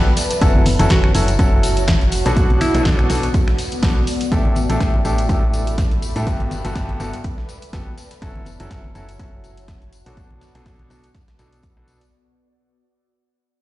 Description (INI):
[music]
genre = piano house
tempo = 123 BPM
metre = 4/4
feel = swing 55% on 16ths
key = unclear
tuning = A4 = 440 Hz
[part]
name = clear upright piano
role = riff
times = 0.0-12.0 s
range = G2 to A4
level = -24 LUFS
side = left 1 dB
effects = sidechain pumping, dub echo
[part]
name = solid FM bass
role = bass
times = 0.0-12.1 s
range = F#1 to A2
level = -21 LUFS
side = equal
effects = sidechain pumping
[part]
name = ethereal airy pad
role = texture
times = 0.0-12.1 s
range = B3 to D6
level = -27 LUFS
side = equal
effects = ensemble chorus, built-in reverb, sidechain pumping
[part]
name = dusty soul sampler-style drum kit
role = drums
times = 0.2-12.1 s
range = hi-hat, snare drum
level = -36 LUFS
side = equal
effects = none
[part]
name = punchy analog drum machine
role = drums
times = 0.2-12.1 s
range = finger snaps, hi-hat, snare drum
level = -25 LUFS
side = equal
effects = none
[part]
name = tambourine and congas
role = percussion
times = 0.2-12.1 s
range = none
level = -27 LUFS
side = left 2 dB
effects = none
[part]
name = electronic kick drum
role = drums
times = 0.4-11.7 s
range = none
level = -18 LUFS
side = equal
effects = none
[part]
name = clear alto saxophone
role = melody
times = 0.9-3.1 s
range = E4 to F#4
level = -26 LUFS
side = right 1 dB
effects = dub echo
[sound]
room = light reverb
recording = played on a big sound system in a bare room, large studio reverb, nothing above 10.6 kHz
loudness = -15 LUFS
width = side -16 dB against mid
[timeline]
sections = 0.0-12.1 A section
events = fade-out 0.0-12.1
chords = 0.2 F#m7; 2.1 Bm7; 4.3 A7sus4; 6.3 Gmaj9; 8.0 F#m7; 9.9 Bm7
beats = | 0.41 0.90 1.39 1.88 | 2.37 2.85 3.34 3.83 | 4.32 4.80 5.29 5.78 | 6.27 6.76 7.24 7.73 | 8.22 8.71 9.20 9.68 | 10.17 10.66 11.15 11.63